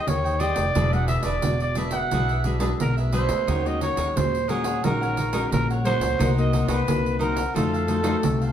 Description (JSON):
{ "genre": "samba and choro", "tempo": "88 BPM", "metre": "4/4", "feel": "straight", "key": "unclear", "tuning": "A4 = 439 Hz", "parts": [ { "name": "growling trumpet", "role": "melody", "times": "0.0-8.5 s", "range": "Ab4 to F#5", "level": "-26 LUFS", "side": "right 2 dB", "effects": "none" }, { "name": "nylon-string guitar", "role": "accompaniment", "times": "0.0-8.5 s", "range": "Bb2 to C5", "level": "-28 LUFS", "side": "left 2 dB", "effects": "none" }, { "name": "upright bass", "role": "bass", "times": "0.1-8.5 s", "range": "E1 to F2", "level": "-26 LUFS", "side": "equal", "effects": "none" }, { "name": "pandeiro", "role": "percussion", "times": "0.1-8.5 s", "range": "none", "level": "-29 LUFS", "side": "right 3 dB", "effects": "none" }, { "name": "cavaquinho", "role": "accompaniment", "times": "0.2-8.5 s", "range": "D4 to G5", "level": "-31 LUFS", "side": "equal", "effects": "none" } ], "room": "wet studio reverb, RT60 0.7 s", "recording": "heard from further back in the room", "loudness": "-21 LUFS", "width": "side -9 dB against mid", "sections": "0.0-8.5 A section", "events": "none", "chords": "0.0 Abmaj7; 0.8 E9; 3.5 Ebm7; 6.2 Cm7b5; 7.6 F7b9", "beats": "0.08 | 0.76 1.44 2.12 2.80 | 3.48 4.16 4.84 5.52 | 6.20 6.88 7.56 8.24" }